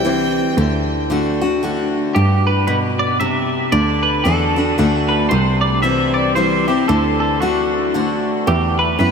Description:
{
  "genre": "honky-tonk and classic country",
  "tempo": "114 BPM",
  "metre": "3/4",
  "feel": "swing 60% on 8ths",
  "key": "G major",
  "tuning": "A4 = 440 Hz",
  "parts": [
    { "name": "clear fiddle", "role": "second line", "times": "0.0-0.7 s", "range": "G5", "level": "-28 LUFS", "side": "right 1 dB", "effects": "analog delay" },
    { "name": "picked steel-string acoustic guitar", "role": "accompaniment", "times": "0.0-9.1 s", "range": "E2 to F#4", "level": "-18 LUFS", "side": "left 2 dB", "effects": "none" },
    { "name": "clear cello", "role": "bass", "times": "0.0-9.1 s", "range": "C2 to G2", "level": "-20 LUFS", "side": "right 1 dB", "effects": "none" },
    { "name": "twangy electric guitar", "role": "melody", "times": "2.1-9.1 s", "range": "F#4 to E5", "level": "-19 LUFS", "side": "right 1 dB", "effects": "analog chorus, analog delay" },
    { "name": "clear upright piano", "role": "accompaniment", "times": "8.5-9.1 s", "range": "G4 to E5", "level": "-26 LUFS", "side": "right 4 dB", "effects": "none" }
  ],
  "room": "wet huge ambient reverb, RT60 7.9 s",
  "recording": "dreamy mix soaked in reverb",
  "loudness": "-14 LUFS",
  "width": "side -6 dB against mid",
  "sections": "0.0-2.2 A section; 2.2-9.1 B section",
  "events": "none",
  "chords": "0.0 C; 0.6 D; 2.2 G; 3.7 D; 5.3 C; 6.9 D; 8.5 Em"
}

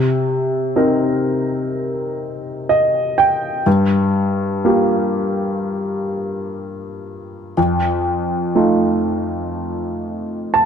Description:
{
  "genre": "folk",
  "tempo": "62 BPM",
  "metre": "4/4",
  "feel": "straight",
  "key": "G minor",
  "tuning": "A4 = 440 Hz",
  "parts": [
    { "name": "warm upright piano", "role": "solo", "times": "0.0-10.7 s", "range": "F2 to A5", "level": "-16 LUFS", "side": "equal", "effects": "none" }
  ],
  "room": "moderate scoring stage reverb, RT60 1.5 s",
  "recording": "close, detailed microphones",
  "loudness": "-16 LUFS",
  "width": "side -7 dB against mid",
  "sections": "0.0-10.7 A section",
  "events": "none",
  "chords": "0.0 Cm7; 3.7 Gm7; 7.6 F7"
}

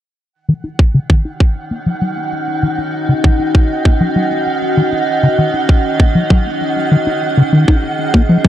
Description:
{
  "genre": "IDM",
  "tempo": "98 BPM",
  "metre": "4/4",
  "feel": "straight",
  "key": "Eb minor",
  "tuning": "A4 = 443 Hz",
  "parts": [
    { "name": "icy glass pad", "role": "sustained chords", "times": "1.5-8.5 s", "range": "Eb3 to Eb5", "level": "-18 LUFS", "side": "equal", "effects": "chorus, built-in reverb, vintage 12-bit sampler grit" },
    { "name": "flickering grainy texture", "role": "texture", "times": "1.6-8.5 s", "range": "Gb5", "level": "-22 LUFS", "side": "right 4 dB", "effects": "built-in reverb, sidechain pumping" },
    { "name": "deep acid bass", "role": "arpeggios", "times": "0.5-8.5 s", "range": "Db3 to Eb4", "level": "-14 LUFS", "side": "left 1 dB", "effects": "vintage 12-bit sampler grit, analog delay" },
    { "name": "electronic kick drum", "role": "drums", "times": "0.8-8.5 s", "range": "none", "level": "-11 LUFS", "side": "equal", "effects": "none" }
  ],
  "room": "light reverb",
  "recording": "dry, gritty hardware recording, cassette tape",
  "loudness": "-12 LUFS",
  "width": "side -12 dB against mid",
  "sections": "0.3-8.5 A section",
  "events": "filter sweep on acid bass 0.3-8.5",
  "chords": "0.3 Ebm7"
}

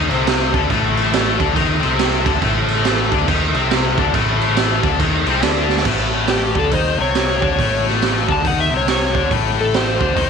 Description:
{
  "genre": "blues rock power trio and southern rock",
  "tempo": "139 BPM",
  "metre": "4/4",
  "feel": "swing 62% on 8ths",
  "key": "unclear",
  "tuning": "A4 = 437 Hz",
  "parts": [
    { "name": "overdriven tonewheel organ", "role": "sustained chords", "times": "0.0-5.8 s", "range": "A3 to A4", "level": "-28 LUFS", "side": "right 10 dB", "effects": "slow rotary speaker, chorus vibrato" },
    { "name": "tight distorted guitar", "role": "riff", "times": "0.0-10.3 s", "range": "A2 to D#4", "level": "-19 LUFS", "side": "left 16 dB", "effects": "distortion" },
    { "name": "overdriven picked electric bass", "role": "bass", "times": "0.0-10.3 s", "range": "A1 to D#2", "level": "-22 LUFS", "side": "equal", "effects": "none" },
    { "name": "raw garage drum kit", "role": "drums", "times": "0.1-10.3 s", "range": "crash cymbal, hi-hat, kick drum, snare drum", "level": "-19 LUFS", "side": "right 6 dB", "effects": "none" },
    { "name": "overdriven slide guitar", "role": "melody", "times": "6.3-10.3 s", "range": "G4 to A5", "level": "-20 LUFS", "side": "left 1 dB", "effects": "none" }
  ],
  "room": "light reverb, small room ambience",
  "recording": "1960s-style stereo with parts hard left and right",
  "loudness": "-14 LUFS",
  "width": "side -6 dB against mid",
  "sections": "0.0-5.9 A section; 5.9-10.3 B section",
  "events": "drum fill 5.6; electric slide guitar solo 5.9-10.3",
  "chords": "0.0 A5; 5.9 A"
}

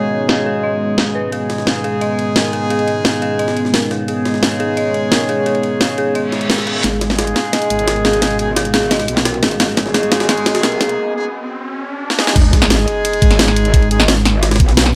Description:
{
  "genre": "dark technical drum and bass",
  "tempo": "174 BPM",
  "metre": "4/4",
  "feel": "straight",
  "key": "G# minor",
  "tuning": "A4 = 440 Hz",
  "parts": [
    { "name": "dark analog pad", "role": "sustained chords", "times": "0.0-11.0 s", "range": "G#3 to C#6", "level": "-25 LUFS", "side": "equal", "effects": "chorus, sidechain pumping" },
    { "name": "dark detuned synth bell", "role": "arpeggios", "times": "0.0-10.9 s", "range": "G#4 to D#5", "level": "-25 LUFS", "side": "equal", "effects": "chorus, sidechain pumping, low-pass filter, tape echo" },
    { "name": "bright brass ensemble", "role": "stabs", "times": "0.0-14.0 s", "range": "G#3 to G#4", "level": "-23 LUFS", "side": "equal", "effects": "low-pass filter, tape echo" },
    { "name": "deep dark ambient pad", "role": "texture", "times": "0.0-15.0 s", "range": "G#3 to D#5", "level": "-29 LUFS", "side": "equal", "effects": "none" },
    { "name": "drum and bass drum kit", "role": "drums", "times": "0.3-14.9 s", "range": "crash cymbal, hi-hat, snare drum", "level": "-18 LUFS", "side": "equal", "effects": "low-pass filter on cymbals, studio ambience, low-pass filter on snare, low-pass filter on hats" },
    { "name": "jungle sampler-style drum kit", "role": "drums", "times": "1.3-14.9 s", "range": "ride cymbal, snare drum", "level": "-27 LUFS", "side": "equal", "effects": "high-pass filter on cymbals, studio ambience, high-pass filter on snare" },
    { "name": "reverse cymbal, riser and sub drop", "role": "sound effects", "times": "6.3-13.7 s", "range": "none", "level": "-27 LUFS", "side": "equal", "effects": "none" },
    { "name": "metallic wobble bass", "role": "bass", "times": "6.8-14.9 s", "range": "G#1 to B1", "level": "-20 LUFS", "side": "equal", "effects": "chorus, overdrive, sidechain pumping" },
    { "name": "electronic kick drum", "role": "drums", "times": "12.4-14.7 s", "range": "none", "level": "-14 LUFS", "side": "equal", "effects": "studio ambience" }
  ],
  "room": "light reverb",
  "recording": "dark, warm production, high-pass filter",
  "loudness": "-15 LUFS",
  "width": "mono",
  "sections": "0.0-6.8 A section; 6.8-12.4 B section; 12.4-15.0 C section",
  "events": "filter sweep on analog synth pad 0.0-6.8; reverse cymbal 6.3-6.8; build-up 6.8-12.4; drum fill 6.8-11.0, 12.1; riser 6.8-12.4; filter sweep on synth bell 6.8-12.4; break 11.0-12.4; drop 12.4-15.0; impact 12.4-13.7",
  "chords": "0.0 G#m"
}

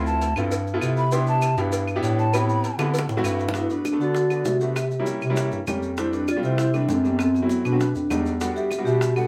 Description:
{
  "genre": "Afro-Cuban jazz",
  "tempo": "198 BPM",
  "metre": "4/4",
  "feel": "straight",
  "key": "G major",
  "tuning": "A4 = 440 Hz",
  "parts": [
    { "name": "breathy mellow jazz flute", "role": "second line", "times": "0.0-9.3 s", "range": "F#4 to C6", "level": "-32 LUFS", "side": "equal", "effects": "none" },
    { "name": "clear concert grand piano", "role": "accompaniment", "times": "0.0-9.3 s", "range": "F#3 to A4", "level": "-31 LUFS", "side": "equal", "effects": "none" },
    { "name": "warm bass clarinet", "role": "bass", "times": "0.0-9.3 s", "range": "D2 to D3", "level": "-27 LUFS", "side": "equal", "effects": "none" },
    { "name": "maracas", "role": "percussion", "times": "0.1-9.3 s", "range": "none", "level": "-44 LUFS", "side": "equal", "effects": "none" },
    { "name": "cowbell and bongos", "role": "percussion", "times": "0.2-9.3 s", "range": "none", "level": "-35 LUFS", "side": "equal", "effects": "none" },
    { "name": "claves", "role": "percussion", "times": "0.4-9.3 s", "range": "none", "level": "-37 LUFS", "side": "equal", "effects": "none" },
    { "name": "vibraphone with medium hard mallets", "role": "melody", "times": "3.6-9.3 s", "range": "B3 to A4", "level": "-26 LUFS", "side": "equal", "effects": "none" }
  ],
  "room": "wet small room reverb, RT60 0.5 s",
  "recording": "heard from further back in the room",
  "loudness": "-23 LUFS",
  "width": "mono",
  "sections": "0.0-3.5 A section; 3.5-9.3 B section",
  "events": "flute solo 0.0-3.5; drum fill 2.8-3.5",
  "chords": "0.0 Dm9; 0.5 G13; 1.1 Cmaj7; 2.3 Am9; 2.9 D7; 3.5 Gmaj9 (rootless); 4.8 C7b9; 6.0 F69; 7.2 F#m7b5; 7.8 B7alt; 8.4 Em9"
}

